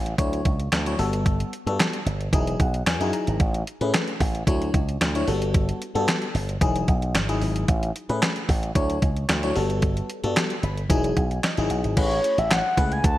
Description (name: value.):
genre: early-eighties boogie funk.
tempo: 112 BPM.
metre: 4/4.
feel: straight.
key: A major.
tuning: A4 = 439 Hz.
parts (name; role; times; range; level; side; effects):
slap bass with an envelope filter; bass; 0.0-13.2 s; E1 to A2; -26 LUFS; equal; none.
crisp 8-bit digital drum machine; drums; 0.1-13.2 s; crash cymbal, handclaps, hi-hat, kick drum, snare drum; -24 LUFS; equal; overdrive, gated reverb.
FM electric piano; accompaniment; 0.2-13.0 s; F#3 to B5; -27 LUFS; left 2 dB; chorus, phaser.
mellow horn-like synth lead; melody; 12.0-13.2 s; C#5 to A5; -23 LUFS; left 1 dB; chorus.
room: light reverb, digital ambience.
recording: bright 1980s-style digital production.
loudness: -21 LUFS.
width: side -15 dB against mid.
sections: 0.0-12.0 A section; 12.0-13.2 B section.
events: FM electric piano fill 2.3-3.4, 10.4-12.0.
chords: 0.2 Dmaj9; 1.0 Gmaj9; 2.3 Emaj9; 3.4 Amaj9; 4.5 Dmaj9; 5.3 Gmaj9; 6.6 Emaj9; 7.7 Amaj9; 8.8 Dmaj9; 9.6 Gmaj9; 10.9 Emaj9; 12.0 Amaj9.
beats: 0.19 0.72 | 1.26 1.79 2.33 2.86 | 3.40 3.94 4.47 5.01 | 5.54 6.08 6.61 7.15 | 7.69 8.22 8.76 9.29 | 9.83 10.36 10.90 11.44 | 11.97 12.51 13.04.